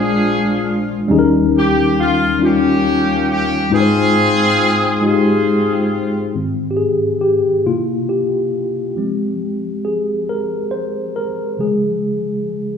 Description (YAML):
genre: gospel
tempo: 46 BPM (dotted quarters)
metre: 6/8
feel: straight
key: Ab major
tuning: A4 = 440 Hz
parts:
  - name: clear horn section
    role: melody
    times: 0.0-6.3 s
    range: Bb3 to Ab4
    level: -17 LUFS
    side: right 1 dB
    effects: none
  - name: mellow tine electric piano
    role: accompaniment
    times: 0.0-12.8 s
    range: Bb1 to C5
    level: -15 LUFS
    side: left 2 dB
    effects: medium stereo tremolo
room: wet large studio reverb, RT60 1.4 s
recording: band playing live in one room, studio reverb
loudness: -14 LUFS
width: side -7 dB against mid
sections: 0.0-6.3 A section; 6.3-12.8 B section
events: tine electric piano solo 6.3-12.8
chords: 0.0 Bb7; 1.1 Eb7; 3.7 Ab6; 6.3 Ab; 7.7 C7; 9.0 Fm; 11.6 Db